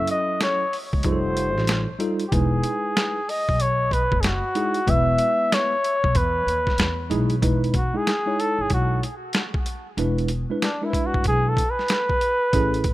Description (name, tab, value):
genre	hip hop, jazz-hop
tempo	94 BPM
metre	4/4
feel	swing 64% on 16ths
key	E major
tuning	A4 = 440 Hz
part	warm flugelhorn	melody	0.0-12.9 s	D4 to E5	-23 LUFS	equal	tape echo
part	tine electric piano	accompaniment	0.0-12.9 s	F#3 to C#5	-26 LUFS	right 1 dB	medium stereo tremolo
part	upright bass	bass	0.0-12.9 s	E1 to E2	-24 LUFS	equal	none
part	boom bap sampler-style drum kit	drums	0.1-12.9 s	hi-hat, kick drum, snare drum	-25 LUFS	equal	none
room	small room reverb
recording	rough home demo mix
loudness	-20 LUFS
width	side -16 dB against mid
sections	0.0-7.4 A section; 7.4-12.9 B section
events	flugelhorn solo 7.4-12.9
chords	0.0 F#m7; 1.0 F9; 2.3 Emaj7; 10.0 E7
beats	0.41 1.04 1.68 | 2.32 2.96 3.60 4.24 | 4.87 5.51 6.15 6.79 | 7.43 8.07 8.70 9.34 | 9.98 10.62 11.26 11.89 | 12.53